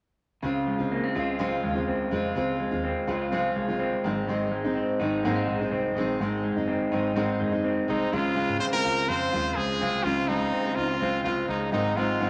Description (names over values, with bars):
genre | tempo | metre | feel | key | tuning
indie pop | 125 BPM | 4/4 | straight | Db major | A4 = 439 Hz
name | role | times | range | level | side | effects
picked steel-string acoustic guitar | accompaniment | 0.4-12.3 s | Ab2 to F4 | -31 LUFS | equal | none
electric guitar through a small old amp | arpeggios | 0.4-12.3 s | Ab2 to F4 | -30 LUFS | equal | none
vintage muted fingered electric bass | bass | 0.4-12.2 s | Gb1 to Db3 | -41 LUFS | equal | none
brilliant trumpet | melody | 7.9-12.3 s | Eb4 to C5 | -29 LUFS | equal | none
room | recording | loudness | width
wet large studio reverb, RT60 1.2 s | nothing above 10.7 kHz | -27 LUFS | mono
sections
0.4-8.1 A section; 8.1-12.3 B section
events
none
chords
0.4 Dbmaj7; 4.0 Ab; 8.1 Dbmaj7; 11.7 Ab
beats
| 0.43 0.91 1.39 1.87 | 2.35 2.83 3.31 3.80 | 4.28 4.76 5.24 5.72 | 6.20 6.68 7.16 7.64 | 8.12 8.60 9.08 9.56 | 10.04 10.52 11.00 11.48 | 11.96